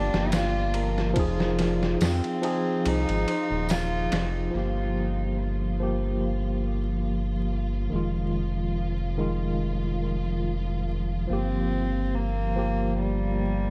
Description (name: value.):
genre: trip hop.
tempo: 71 BPM.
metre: 4/4.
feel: swing 54% on 16ths.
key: G phrygian.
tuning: A4 = 438 Hz.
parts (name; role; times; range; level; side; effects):
warm cello; melody; 0.0-4.4, 11.3-13.7 s; G3 to F4; -34 LUFS; equal; tape echo.
tine electric piano; accompaniment; 0.0-13.7 s; Eb3 to Ab4; -32 LUFS; equal; medium tremolo, vintage 12-bit sampler grit, tape echo.
warm studio string section; sustained chords; 0.0-13.7 s; F3 to F4; -40 LUFS; equal; none.
mellow electric guitar; arpeggios; 0.0-4.5 s; F4 to C5; -40 LUFS; equal; none.
round analog bass; bass; 0.0-13.7 s; Eb1 to F2; -31 LUFS; equal; none.
trip hop sampler-style drum kit; drums; 0.1-4.3 s; hi-hat, kick drum, ride cymbal, snare drum; -33 LUFS; equal; none.
tambourine; percussion; 0.3-3.9 s; none; -45 LUFS; equal; none.
room: little or no reverb.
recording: echo-heavy mix, vinyl crackle.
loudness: -27 LUFS.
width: mono.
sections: 0.0-4.5 A section; 4.5-13.7 B section.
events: kick drops out 2.9-4.5.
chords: 0.0 Gm7; 1.2 Fm7; 4.5 Gm7; 7.9 Fm7; 11.3 Gm7.